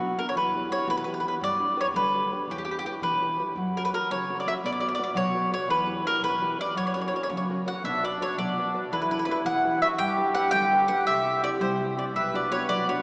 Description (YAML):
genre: italian folk, Italian serenade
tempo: 112 BPM (dotted quarters)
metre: 6/8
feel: rubato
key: B harmonic minor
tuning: A4 = 440 Hz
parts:
  - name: mandolin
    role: melody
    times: 0.0-13.0 s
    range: F#4 to G5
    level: -25 LUFS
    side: equal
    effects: none
  - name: nylon-string guitar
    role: accompaniment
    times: 0.0-13.0 s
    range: B2 to D5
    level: -32 LUFS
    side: equal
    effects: none
  - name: upright bass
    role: bass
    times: 0.0-13.0 s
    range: B1 to G3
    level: -38 LUFS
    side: equal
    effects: none
  - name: accordion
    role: second line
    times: 7.8-13.0 s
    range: D4 to B4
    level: -29 LUFS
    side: equal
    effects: light tremolo tuning
room: wet cathedral reverb, RT60 7.1 s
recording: recorded in a church or concert hall, small speaker sound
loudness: -24 LUFS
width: side -29 dB against mid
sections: 0.0-13.0 A section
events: none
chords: 0.4 Em; 1.4 G; 2.5 Em; 3.6 F#; 4.6 Bm; 5.7 Em; 6.8 F#; 7.8 Bm; 8.9 Em; 10.0 G; 11.1 C; 12.1 Bm